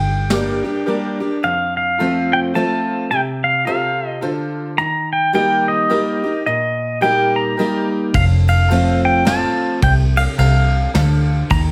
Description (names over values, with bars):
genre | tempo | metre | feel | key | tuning
honky-tonk and classic country | 107 BPM | 3/4 | swing 60% on 8ths | unclear | A4 = 443 Hz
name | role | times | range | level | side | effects
pedal steel guitar | melody | 0.0-11.6 s | Eb5 to Bb5 | -21 LUFS | equal | plate reverb
picked steel-string acoustic guitar | accompaniment | 0.0-11.7 s | F2 to G4 | -23 LUFS | equal | none
vintage muted fingered electric bass | bass | 0.0-0.6, 8.1-11.7 s | F1 to Eb2 | -18 LUFS | equal | none
tack piano | accompaniment | 0.3-11.4 s | F4 to F5 | -29 LUFS | equal | none
soft brush drum kit | drums | 0.3-0.5, 8.1-11.7 s | kick drum, ride cymbal, snare drum | -25 LUFS | equal | none
room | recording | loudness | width
wet studio reverb, RT60 0.7 s | heard from further back in the room | -17 LUFS | mono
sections
0.0-1.4 A section; 1.4-11.7 B section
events
none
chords
0.0 Gm; 1.4 F; 4.8 Eb; 8.1 F